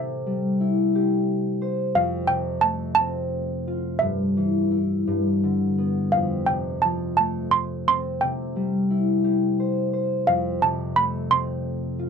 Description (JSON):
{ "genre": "children's music, lullaby", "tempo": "58 BPM (dotted quarters)", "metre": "6/8", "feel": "rubato", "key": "C major", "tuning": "A4 = 440 Hz", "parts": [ { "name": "malleted handbells", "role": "melody", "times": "0.0-12.1 s", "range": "E5 to C6", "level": "-20 LUFS", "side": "right 3 dB", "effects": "none" }, { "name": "concert harp", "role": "accompaniment", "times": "0.0-12.1 s", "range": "F2 to C5", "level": "-23 LUFS", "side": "left 1 dB", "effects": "none" } ], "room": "light reverb", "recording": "dry, close 1970s-style studio recording", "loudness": "-21 LUFS", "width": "side -6 dB against mid", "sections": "0.0-12.1 A section", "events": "harp fill 9.3-10.3", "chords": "0.0 C; 1.9 F; 4.0 Em/G; 5.1 G; 6.1 F; 8.2 C; 10.3 F", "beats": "0.93 | 1.95 2.96 | 4.00 5.06 | 6.12 7.18 | 8.22 9.25 | 10.28 11.31" }